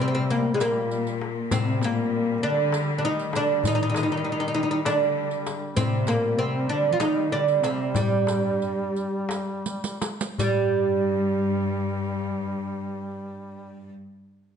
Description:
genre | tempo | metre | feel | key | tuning
Turkish makam ensemble | 158-198 BPM (eighths) | 7/8 | straight | G minor | A4 = 440 Hz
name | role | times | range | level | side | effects
oud | melody | 0.0-13.9 s | G3 to F4 | -25 LUFS | right 2 dB | none
rich studio cello section | second line | 0.0-13.9 s | G2 to F3 | -29 LUFS | left 1 dB | none
clear duduk | drone | 0.0-13.9 s | G3 | -35 LUFS | left 1 dB | none
darbuka | percussion | 0.0-10.7 s | none | -29 LUFS | left 4 dB | none
riq | percussion | 0.3-10.7 s | none | -34 LUFS | right 5 dB | none
room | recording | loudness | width
moderate recital hall reverb, RT60 1.2 s | nothing above 10.3 kHz | -22 LUFS | side -7 dB against mid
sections
0.0-10.4 A section; 10.4-14.6 B section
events
slowing down 5.8-10.4; drum fill 9.7-10.4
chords
none

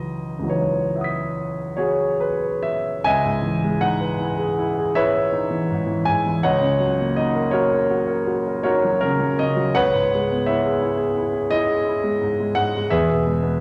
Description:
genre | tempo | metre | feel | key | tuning
classical, impressionist solo piano | 55 BPM (dotted quarters) | 9/8 | uneven beats, rubato | C# minor | A4 = 439 Hz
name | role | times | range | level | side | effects
clear concert grand piano | solo | 0.0-13.6 s | C#2 to B6 | -21 LUFS | equal | none
room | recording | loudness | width
wet recital hall reverb, RT60 1.4 s | none | -21 LUFS | mono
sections
0.0-3.0 A section; 3.0-13.6 B section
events
none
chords
0.0 C#m11; 6.4 D#m7/C#; 9.8 C#m7; 12.9 E

